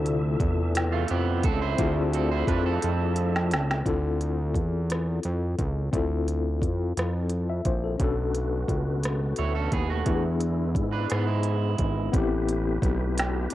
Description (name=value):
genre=slow six-eight R&B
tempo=58 BPM (dotted quarters)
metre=6/8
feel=straight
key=unclear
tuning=A4 = 441 Hz
part: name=mellow tine electric piano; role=accompaniment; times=0.0-13.5 s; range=C3 to E5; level=-30 LUFS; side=left 6 dB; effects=medium tremolo, cassette tape
part: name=tonewheel organ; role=sustained chords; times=0.0-3.8, 8.0-13.5 s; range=B2 to E5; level=-37 LUFS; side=equal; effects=chorus vibrato, fast rotary speaker, cassette tape
part: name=fat analog bass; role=bass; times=0.0-13.5 s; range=G#1 to G#2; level=-26 LUFS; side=equal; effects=none
part: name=organic electronic drum kit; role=drums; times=0.1-13.5 s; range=hi-hat, kick drum, rim click, snare drum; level=-29 LUFS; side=equal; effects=none
part: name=electric guitar at the edge of break-up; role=second line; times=0.9-3.7, 9.4-12.1 s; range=G#3 to C#5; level=-31 LUFS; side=right 9 dB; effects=cassette tape
room=digital ambience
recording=home recording on cassette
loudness=-24 LUFS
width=side -14 dB against mid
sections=0.0-3.9 A section; 3.9-12.1 B section; 12.1-13.5 A section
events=drum fill 2.8-3.9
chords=0.0 Dm9; 8.0 Bm9; 10.1 E7; 12.1 Am9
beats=0.75 | 1.79 2.82 | 3.86 4.89 | 5.93 6.96 | 8.00 9.03 | 10.06 11.10 | 12.13 13.17